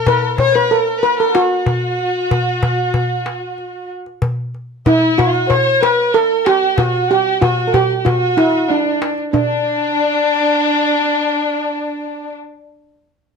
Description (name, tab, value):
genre	Arabic maqam ensemble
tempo	94 BPM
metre	4/4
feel	straight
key	D maqam huzam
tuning	A4 = 442 Hz
part	steel pan	melody	0.0-12.3 s	D4 to C5+50c	-15 LUFS	right 1 dB	none
part	dark chamber violin section	second line	0.0-12.3 s	D4 to C5+50c	-17 LUFS	left 1 dB	none
part	darbuka	percussion	0.1-9.6 s	none	-20 LUFS	left 1 dB	none
room	moderate studio reverb, RT60 0.6 s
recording	none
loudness	-13 LUFS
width	side -5 dB against mid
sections	0.0-9.3 A section; 9.3-11.9 B section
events	none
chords	none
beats	0.38 1.03 | 1.67 2.31 2.95 3.59 | 4.23 4.87 5.51 6.14 | 6.78 7.42 8.06 8.70 | 9.34 9.97 10.61 11.25